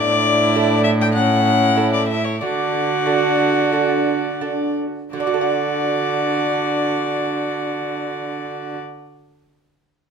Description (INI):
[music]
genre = classical, renaissance-style consort dance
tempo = 83-102 BPM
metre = 4/4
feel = straight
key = D major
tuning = A4 = 441 Hz
[part]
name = warm violin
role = melody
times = 0.0-8.8 s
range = C#5 to G5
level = -22 LUFS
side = left 6 dB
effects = none
[part]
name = warm viola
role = second line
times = 0.0-8.8 s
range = E4 to F#4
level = -24 LUFS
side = right 5 dB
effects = none
[part]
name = lute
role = accompaniment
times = 0.0-9.1 s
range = A2 to F#5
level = -24 LUFS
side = right 5 dB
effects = none
[part]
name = warm trombone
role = accompaniment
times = 0.0-8.8 s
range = C#4 to D4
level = -24 LUFS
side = left 1 dB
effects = none
[part]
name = warm cello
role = bass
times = 0.0-8.8 s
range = A2 to D3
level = -23 LUFS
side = right 2 dB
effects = none
[sound]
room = moderate stone room reverb, RT60 1.0 s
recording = minimal, uncompressed stereo recording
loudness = -17 LUFS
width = side -6 dB against mid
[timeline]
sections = 0.0-5.1 A section; 5.1-8.0 B section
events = slowing down 0.0-5.1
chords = 0.0 Asus4; 1.2 A; 2.4 D